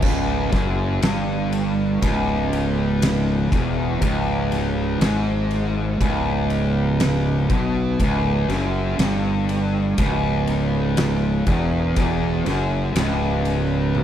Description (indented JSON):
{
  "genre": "stoner and doom metal",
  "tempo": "60 BPM",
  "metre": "4/4",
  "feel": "straight",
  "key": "C# minor",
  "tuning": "A4 = 443 Hz",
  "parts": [
    { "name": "fuzz guitar", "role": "riff", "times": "0.0-14.0 s", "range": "C#2 to B2", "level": "-21 LUFS", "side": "equal", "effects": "distortion" },
    { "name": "fuzz fingered electric bass", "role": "bass", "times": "0.0-14.0 s", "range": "C#1 to B1", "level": "-24 LUFS", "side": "equal", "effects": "overdrive, tube saturation" },
    { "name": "oversized low-tuned drum kit", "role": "drums", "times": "0.0-14.0 s", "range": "crash cymbal, kick drum, ride cymbal, snare drum, toms", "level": "-26 LUFS", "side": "equal", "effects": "none" }
  ],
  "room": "little or no reverb",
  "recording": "none",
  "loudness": "-18 LUFS",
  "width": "side -10 dB against mid",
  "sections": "0.0-14.0 A section",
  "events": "none",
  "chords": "0.0 C#m"
}